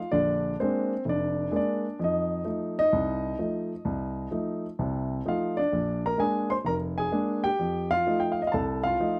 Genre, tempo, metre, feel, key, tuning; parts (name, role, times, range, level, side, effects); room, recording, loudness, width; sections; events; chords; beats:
solo jazz; 128 BPM; 4/4; swing 67% on 8ths; A4 = 440 Hz
warm grand piano; solo; 0.0-9.2 s; F1 to C6; -28 LUFS; equal
light reverb; close, detailed microphones; -28 LUFS; mono
0.0-9.2 A section
0.1 Bb7; 2.0 F7; 5.7 Bb7; 7.6 F7
| 0.11 0.58 1.05 1.51 | 1.98 2.45 2.92 3.39 | 3.85 4.32 4.79 5.26 | 5.72 6.19 6.66 7.13 | 7.59 8.06 8.53 8.99